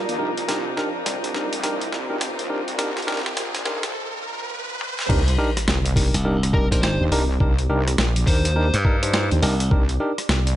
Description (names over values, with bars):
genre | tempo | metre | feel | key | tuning
glitch hop | 104 BPM | 4/4 | swing 62% on 16ths | C minor | A4 = 440 Hz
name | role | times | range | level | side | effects
warm chamber string section | sustained chords | 0.0-5.1 s | Bb3 to Eb4 | -32 LUFS | left 2 dB | sidechain pumping
wobble bass | bass | 0.0-10.6 s | Bb1 to Eb2 | -24 LUFS | equal | chorus, high-pass filter
riser and sub drop | sound effects | 0.3-7.4 s | none | -30 LUFS | equal | none
granular cloud pad | texture | 0.0-10.6 s | F4 to D5 | -34 LUFS | right 2 dB | built-in reverb, sidechain pumping
boom bap sampler-style drum kit | drums | 0.1-10.6 s | crash cymbal, hi-hat, rim click, snare drum, toms | -26 LUFS | equal | high-pass filter on snare, high-pass filter on hats, high-pass filter on toms, high-pass filter on cymbals
bright tine electric piano | stabs | 0.2-10.1 s | D4 to C5 | -27 LUFS | equal | sidechain pumping, low-pass filter, ping-pong delay
electronic kick drum | drums | 5.1-9.9 s | none | -20 LUFS | equal | none
glassy slap bass | bass | 6.1-9.7 s | C2 to G2 | -21 LUFS | equal | none
fuzz lead guitar | melody | 6.5-8.7 s | Bb4 to C5 | -30 LUFS | left 1 dB | distortion, ping-pong delay
room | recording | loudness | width
light reverb | high-pass filter, nothing above 10.9 kHz | -19 LUFS | side -13 dB against mid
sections
0.0-5.1 A section; 5.1-10.6 B section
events
build-up 0.0-5.1; drum fill 0.0-3.9, 4.8; riser 0.3-5.1; break 3.9-5.1; drop 5.1-10.6; impact 5.1-7.4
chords
0.0 Cm9